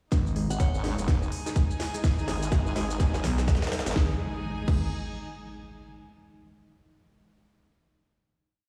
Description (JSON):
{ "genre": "bass house", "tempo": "125 BPM", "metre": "4/4", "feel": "swing 60% on 16ths", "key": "unclear", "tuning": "A4 = 440 Hz", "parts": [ { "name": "deep dark ambient pad", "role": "sustained chords", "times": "1.3-4.2 s", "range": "G#3 to G#4", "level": "-44 LUFS", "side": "equal", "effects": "none" }, { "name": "growling FM bass", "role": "bass", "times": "0.1-4.9 s", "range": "G#1 to B1", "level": "-30 LUFS", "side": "equal", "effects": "tube saturation, sidechain pumping" }, { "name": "electronic kick drum", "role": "drums", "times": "0.1-4.8 s", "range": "none", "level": "-28 LUFS", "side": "equal", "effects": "none" }, { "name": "garage drum kit", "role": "drums", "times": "0.1-4.8 s", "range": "crash cymbal, hi-hat, shaker, snare drum", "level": "-38 LUFS", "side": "equal", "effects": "none" }, { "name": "riser and impact", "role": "sound effects", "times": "1.4-5.9 s", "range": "none", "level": "-40 LUFS", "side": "equal", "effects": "none" }, { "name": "dark studio string section", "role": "texture", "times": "0.1-5.8 s", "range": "D#4 to G#5", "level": "-43 LUFS", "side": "equal", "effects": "sidechain pumping" }, { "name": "orchestra-hit-like synth stab", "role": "stabs", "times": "0.4-4.9 s", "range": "G#3 to G#4", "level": "-41 LUFS", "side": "equal", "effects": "none" }, { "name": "glassy synth bell", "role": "melody", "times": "0.5-1.0 s", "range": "C#5 to F#5", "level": "-43 LUFS", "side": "equal", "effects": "chorus, digital delay" }, { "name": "formant-sweep wobble bass", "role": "bass", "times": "0.5-3.9 s", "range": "F#1 to G#1", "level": "-33 LUFS", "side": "equal", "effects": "chorus, sidechain pumping" } ], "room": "light reverb, digital ambience", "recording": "played on a big sound system in a bare room, stone room reverb, studio ambience", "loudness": "-27 LUFS", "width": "mono", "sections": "0.1-4.0 build; 4.0-5.9 final chord", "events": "build-up 0.1-4.0; drum fill 0.1-4.0; filter sweep on synth stab 0.1-4.0", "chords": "0.1 G#5", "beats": "| 0.12 0.60 1.08 1.56 | 2.04 2.52 3.00 3.48 | 3.96 4.44 4.92 5.40" }